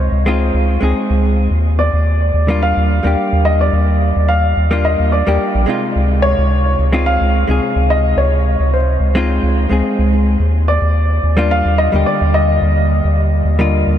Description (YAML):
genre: sunset chillout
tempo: 108 BPM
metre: 4/4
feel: swing 53% on 16ths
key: unclear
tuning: A4 = 440 Hz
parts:
  - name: dark grand piano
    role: melody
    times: 0.0-14.0 s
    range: C5 to F5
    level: -19 LUFS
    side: equal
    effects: vintage 12-bit sampler grit, tape echo
  - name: hollow-body jazz guitar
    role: accompaniment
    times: 0.0-14.0 s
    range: C3 to Ab4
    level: -18 LUFS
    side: equal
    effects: auto-pan, tape echo
  - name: round analog bass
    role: bass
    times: 0.0-14.0 s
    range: Bb1 to Eb2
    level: -14 LUFS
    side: equal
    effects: none
room: moderate huge ambient reverb, RT60 9.0 s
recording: dreamy mix soaked in reverb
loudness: -12 LUFS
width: side -10 dB against mid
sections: 0.0-14.0 A section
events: none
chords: 0.0 Dbmaj9; 1.5 Ebmaj9; 6.0 Dbmaj9; 10.4 Ebmaj9